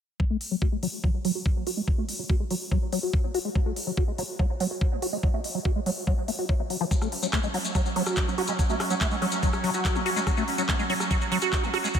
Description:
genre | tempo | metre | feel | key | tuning
psychedelic trance | 143 BPM | 4/4 | straight | F# minor | A4 = 440 Hz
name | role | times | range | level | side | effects
liquid acid bass | riff | 0.2-12.0 s | E#3 to F#4 | -29 LUFS | moving between left 7 dB and right 6 dB | phaser, auto-pan, sidechain pumping, analog delay
electronic kick drum | drums | 0.2-12.0 s | none | -25 LUFS | equal | overdrive
techno drum kit | drums | 0.4-12.0 s | handclaps, hi-hat, rim click | -32 LUFS | equal | none
pulsing gated texture | sustained chords | 6.9-12.0 s | F#3 to C#4 | -30 LUFS | right 2 dB | chorus, built-in reverb, vintage 12-bit sampler grit, sidechain pumping
maracas | percussion | 6.9-12.0 s | none | -36 LUFS | left 3 dB | none
room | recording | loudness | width
light reverb, digital ambience | none | -24 LUFS | side -8 dB against mid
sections
0.2-12.0 A section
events
filter sweep on acid bass 0.2-12.0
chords
0.2 F#5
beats
| 0.20 0.62 1.04 1.46 | 1.88 2.30 2.71 3.13 | 3.56 3.97 4.39 4.81 | 5.23 5.65 6.07 6.49 | 6.91 7.33 7.75 8.17 | 8.59 9.01 9.43 9.85 | 10.27 10.69 11.11 11.53 | 11.95

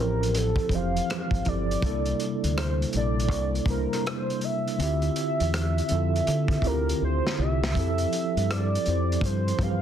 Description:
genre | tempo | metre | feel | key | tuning
R&B, neo-soul | 81 BPM | 4/4 | swing 64% on 16ths | unclear | A4 = 440 Hz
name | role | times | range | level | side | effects
warm velvety synth lead | melody | 0.0-9.8 s | A4 to F5 | -30 LUFS | right 1 dB | chorus
mellow tine electric piano | accompaniment | 0.0-9.8 s | C3 to C5 | -29 LUFS | right 1 dB | fast stereo tremolo
deep dub fingered electric bass | bass | 0.0-9.8 s | F1 to D3 | -27 LUFS | equal | none
crunchy breakbeat drum kit | drums | 0.2-9.8 s | hi-hat, kick drum, rim click, snare drum | -31 LUFS | equal | soft clipping on snare
room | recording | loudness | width
light reverb | dense, heavily limited modern master | -23 LUFS | side -9 dB against mid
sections
0.0-9.8 A section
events
drum fill 7.0-7.8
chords
0.0 Fmaj9; 1.8 C13; 4.8 Dm11; 7.8 Fmaj9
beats
0.34 1.08 | 1.82 2.56 3.31 4.05 | 4.79 5.53 6.27 7.01 | 7.75 8.49 9.23

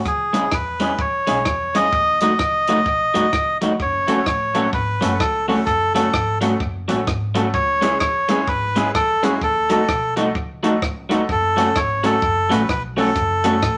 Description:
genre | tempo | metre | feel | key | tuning
ska | 128 BPM | 4/4 | swing 61% on 8ths | unclear | A4 = 440 Hz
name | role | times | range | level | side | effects
melodica | melody | 0.1-13.8 s | F#4 to D#5 | -21 LUFS | equal | none
upright bass | bass | 0.1-13.8 s | F#1 to E2 | -32 LUFS | equal | none
compact cocktail drum kit | drums | 0.1-13.8 s | hi-hat, kick drum, rim click | -28 LUFS | equal | tape echo
electric guitar through a small old amp | accompaniment | 0.3-13.6 s | F#3 to G#4 | -24 LUFS | equal | none
honky-tonk upright piano | stabs | 4.1-13.6 s | G#3 to A4 | -28 LUFS | equal | none
room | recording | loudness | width
moderate studio reverb, RT60 0.7 s | none | -19 LUFS | mono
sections
0.0-13.8 A section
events
none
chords
0.1 C#m; 1.9 D#dim; 3.8 F#m; 7.5 C#m; 9.4 D#dim; 11.3 F#m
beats
| 0.06 0.52 0.99 1.46 | 1.93 2.39 2.86 3.33 | 3.80 4.26 4.73 5.20 | 5.67 6.14 6.60 7.07 | 7.54 8.01 8.48 8.95 | 9.41 9.88 10.35 10.82 | 11.29 11.76 12.22 12.69 | 13.16 13.63

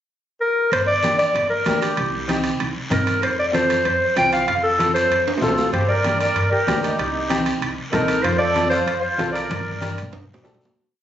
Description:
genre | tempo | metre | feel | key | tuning
latin, cumbia | 191 BPM | 4/4 | straight | G minor | A4 = 441 Hz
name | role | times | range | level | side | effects
warm clarinet | melody | 0.4-9.9 s | G4 to G5 | -20 LUFS | equal | none
upright bass | bass | 0.7-10.7 s | G1 to G2 | -28 LUFS | equal | none
congas | percussion | 0.7-10.7 s | none | -30 LUFS | left 1 dB | none
guiro | percussion | 0.7-10.8 s | none | -34 LUFS | left 1 dB | none
timbales | percussion | 0.7-10.7 s | none | -28 LUFS | right 6 dB | none
warm upright piano | accompaniment | 1.0-10.7 s | Bb3 to C5 | -26 LUFS | equal | none
accordion | second line | 5.4-9.9 s | Eb4 to Bb4 | -27 LUFS | equal | light tremolo tuning
room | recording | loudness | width
light reverb | recorded on a phone in the room, studio reverb, nothing above 7.9 kHz | -18 LUFS | side -10 dB against mid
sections
0.0-0.7 pickup bar; 0.7-10.8 A section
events
drum fill 5.3-5.7, 9.5-10.8; fade-out 8.7-10.8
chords
0.0 N.C.; 0.7 Gm; 2.0 Cm; 3.2 F; 5.7 Gm; 7.0 Cm; 8.2 F; 9.5 Gm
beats
0.10 0.41 | 0.72 1.03 1.35 1.66 | 1.97 2.29 2.60 2.91 | 3.23 3.54 3.85 4.17 | 4.48 4.79 5.11 5.42 | 5.73 6.05 6.36 6.68 | 6.99 7.30 7.62 7.93 | 8.24 8.56 8.87 9.19 | 9.50 9.81 10.13 10.44

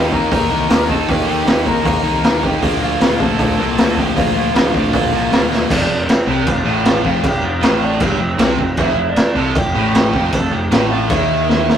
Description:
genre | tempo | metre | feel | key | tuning
punk rock | 156 BPM | 4/4 | straight | F major from 5.7 s | A4 = 440 Hz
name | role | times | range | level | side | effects
lead guitar through a small cranked amp | melody | 0.0-11.8 s | C4 to Bb5 | -21 LUFS | right 2 dB | overdrive
crunchy overdriven guitar | riff | 0.0-11.8 s | F2 to Eb4 | -22 LUFS | left 7 dB | none
sludgy distorted guitar | riff | 0.0-11.8 s | F2 to Eb4 | -26 LUFS | equal | none
tight distorted guitar | riff | 0.0-11.8 s | F2 to Eb4 | -23 LUFS | right 8 dB | distortion
fuzz picked electric bass | bass | 0.0-11.8 s | F1 to Eb2 | -22 LUFS | equal | overdrive
raw garage drum kit | drums | 0.1-11.8 s | crash cymbal, hi-hat, kick drum, snare drum | -16 LUFS | equal | none
room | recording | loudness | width
light reverb | rough rehearsal-room recording, tube saturation | -13 LUFS | side -9 dB against mid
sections
0.0-5.7 A section; 5.7-11.8 B section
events
drum fill 5.5, 11.5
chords
0.0 Eb; 2.6 Bb; 5.7 F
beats
0.31 0.70 | 1.08 1.47 1.85 2.24 | 2.62 3.01 3.39 3.78 | 4.16 4.54 4.93 5.32 | 5.70 6.08 6.47 6.86 | 7.24 7.63 8.01 8.40 | 8.78 9.17 9.56 9.94 | 10.33 10.71 11.10 11.49

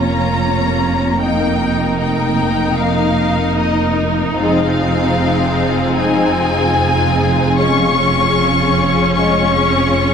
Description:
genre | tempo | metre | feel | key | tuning
cinematic, epic orchestral film score | 75 BPM | 4/4 | straight | F minor | A4 = 438 Hz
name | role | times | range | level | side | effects
dark symphonic violin section | melody | 0.0-10.1 s | Eb5 to Db6 | -19 LUFS | left 4 dB | none
warm studio violin section | second line | 0.0-10.1 s | Eb4 to Db5 | -22 LUFS | left 4 dB | none
rich symphonic viola section | accompaniment | 0.0-10.1 s | Bb3 to Eb4 | -19 LUFS | equal | none
warm symphonic cello section | bass | 0.0-10.1 s | F2 | -20 LUFS | right 3 dB | none
warm symphonic double bass section | bass | 0.0-10.1 s | F1 | -21 LUFS | right 4 dB | none
mellow French horn section | sustained chords | 1.2-9.5 s | Ab3 to Eb4 | -22 LUFS | left 4 dB | none
room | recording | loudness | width
wet scoring stage reverb, RT60 1.7 s | none | -13 LUFS | side -7 dB against mid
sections
0.0-10.1 A section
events
none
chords
0.0 Bbm/F; 1.2 Eb/F; 4.4 Fm7; 7.6 Db/F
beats
0.42 | 1.22 2.01 2.80 3.59 | 4.38 5.18 5.97 6.77 | 7.57 8.37 9.17 9.97

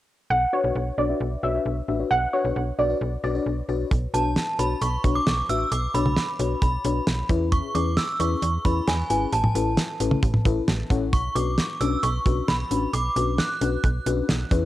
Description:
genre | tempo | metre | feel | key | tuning
synth-pop | 133 BPM | 4/4 | straight | B dorian | A4 = 440 Hz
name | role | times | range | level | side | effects
warbly dusty pluck | second line | 0.3-3.3 s | C#5 to F#5 | -25 LUFS | right 1 dB | chorus, cassette tape, analog delay
slap-like FM bass | bass | 0.3-14.7 s | G#1 to E2 | -26 LUFS | right 1 dB | none
FM electric piano with soft pad layer | accompaniment | 0.5-14.7 s | C#4 to A5 | -28 LUFS | left 6 dB | chorus, low-pass filter, cassette tape
damped 70s drum kit | drums | 3.9-14.6 s | hi-hat, kick drum, snare drum, toms | -24 LUFS | right 1 dB | cassette tape
synth chime | melody | 4.1-14.5 s | G#5 to F#6 | -27 LUFS | right 2 dB | ensemble chorus, analog delay
room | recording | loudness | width
moderate spring reverb, RT60 1.6 s, small room ambience | home recording on cassette | -21 LUFS | side -14 dB against mid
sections
0.3-3.9 A section; 3.9-14.7 B section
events
filter sweep on FM electric piano 0.3-3.9; FM electric piano fill 10.5-11.1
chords
0.3 Bmadd9; 7.3 E6; 9.3 Aadd9; 11.1 Bmadd9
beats
| 0.30 0.76 1.21 1.66 | 2.11 2.56 3.01 3.46 | 3.91 4.36 4.82 5.27 | 5.72 6.17 6.62 7.07 | 7.52 7.97 8.42 8.88 | 9.33 9.78 10.23 10.68 | 11.13 11.58 12.03 12.48 | 12.94 13.39 13.84 14.29

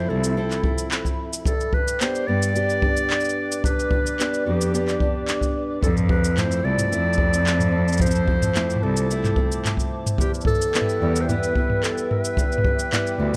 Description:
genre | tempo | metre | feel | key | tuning
folktronica | 110 BPM | 4/4 | straight | F lydian | A4 = 440 Hz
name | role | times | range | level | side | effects
warm clarinet | melody | 0.0-13.4 s | G4 to D5 | -28 LUFS | equal | digital delay
warbly tape-like pad | sustained chords | 0.0-13.4 s | A4 to E6 | -36 LUFS | equal | chorus, built-in reverb
fingerpicked steel-string acoustic guitar | arpeggios | 0.0-13.4 s | E2 to A4 | -31 LUFS | equal | digital delay
clear cello | bass | 0.0-13.4 s | C2 to G2 | -26 LUFS | equal | none
organic electronic drum kit | drums | 0.2-13.4 s | cabasa, handclaps, toms | -29 LUFS | equal | none
kick drum | drums | 0.6-12.8 s | none | -26 LUFS | equal | none
room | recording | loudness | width
light reverb, studio ambience | none | -22 LUFS | mono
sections
0.0-13.4 A section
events
none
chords
0.0 Fmaj7; 1.5 G; 5.8 Fmaj7; 10.2 Em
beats
0.37 0.92 | 1.46 2.01 2.55 3.10 | 3.64 4.19 4.74 5.28 | 5.83 6.37 6.92 7.46 | 8.01 8.55 9.10 9.64 | 10.19 10.73 11.28 11.83 | 12.37 12.92

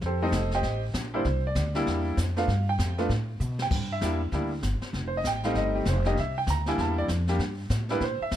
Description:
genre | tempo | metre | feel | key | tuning
jazz piano trio | 195 BPM | 4/4 | swing 62% on 8ths | C mixolydian | A4 = 441 Hz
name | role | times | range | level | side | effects
upright bass | bass | 0.0-8.4 s | F1 to B2 | -28 LUFS | equal | none
jazz brush drum kit | drums | 0.0-8.4 s | brushed snare drum, crash cymbal, hi-hat, kick drum, snare drum | -34 LUFS | left 1 dB | none
bright upright piano | melody | 0.1-8.3 s | G3 to Bb5 | -28 LUFS | right 1 dB | none
room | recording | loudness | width
little or no reverb | none | -25 LUFS | side -11 dB against mid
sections
0.0-3.7 A section; 3.7-8.4 A section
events
upright piano solo 0.0-8.4; drum fill 3.4-3.7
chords
0.0 F9; 1.3 C9; 2.5 G9; 3.7 Gm6; 4.9 F9; 6.2 C9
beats
| 0.03 0.33 0.64 0.95 | 1.25 1.56 1.87 2.18 | 2.48 2.79 3.10 3.40 | 3.71 4.02 4.33 4.63 | 4.94 5.25 5.56 5.87 | 6.17 6.48 6.79 7.09 | 7.40 7.71 8.02 8.32

